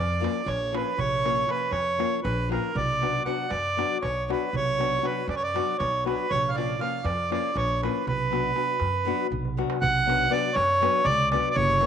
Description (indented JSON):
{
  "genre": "balkan folk, Balkan wedding band",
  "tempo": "238 BPM (eighths)",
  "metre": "7/8",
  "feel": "straight",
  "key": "B hungarian minor",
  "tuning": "A4 = 441 Hz",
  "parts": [
    { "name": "accordion", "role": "melody", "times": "0.0-11.9 s", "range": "A#4 to F#5", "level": "-25 LUFS", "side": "right 2 dB", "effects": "none" },
    { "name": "upright bass", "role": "bass", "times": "0.0-11.9 s", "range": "F#1 to F#2", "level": "-31 LUFS", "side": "left 1 dB", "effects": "none" },
    { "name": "nylon-string guitar", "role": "accompaniment", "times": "0.2-11.9 s", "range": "E#3 to B4", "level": "-31 LUFS", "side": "left 13 dB", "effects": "none" },
    { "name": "darbuka", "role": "percussion", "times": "0.2-11.9 s", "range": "none", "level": "-34 LUFS", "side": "right 6 dB", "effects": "none" }
  ],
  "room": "wet spring reverb, RT60 1.5 s, small room reverb",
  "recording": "1960s-style stereo with parts hard left and right",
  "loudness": "-23 LUFS",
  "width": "side -8 dB against mid",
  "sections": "0.0-9.8 A section; 9.8-11.9 B section",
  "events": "drum fill 9.3-9.8",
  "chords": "0.0 A#m; 2.8 Bm; 6.3 A#m; 8.1 Bm"
}